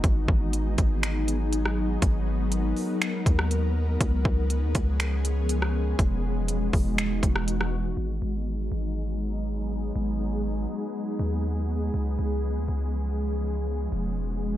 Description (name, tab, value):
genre	hip hop, atmospheric cloud-rap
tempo	121 BPM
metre	4/4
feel	half-time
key	G# minor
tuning	A4 = 439 Hz
part	ethereal airy pad	sustained chords	0.0-14.6 s	E3 to A#4	-30 LUFS	left 1 dB	ensemble chorus, built-in reverb, sidechain pumping, low-pass filter
part	long sustained 808-style bass	bass	0.0-14.6 s	E1 to D#2	-27 LUFS	equal	none
part	trap drum kit	drums	0.0-7.7 s	finger snaps, hi-hat, kick drum, rim click	-25 LUFS	equal	none
room	little or no reverb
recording	none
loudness	-24 LUFS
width	side -13 dB against mid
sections	0.0-8.0 A section; 8.0-14.6 B section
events	filter sweep on ambient pad 8.0-14.6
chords	0.0 G#m7; 4.0 C#7; 6.0 Emaj9; 8.0 G#m7; 11.9 C#7; 13.9 Emaj9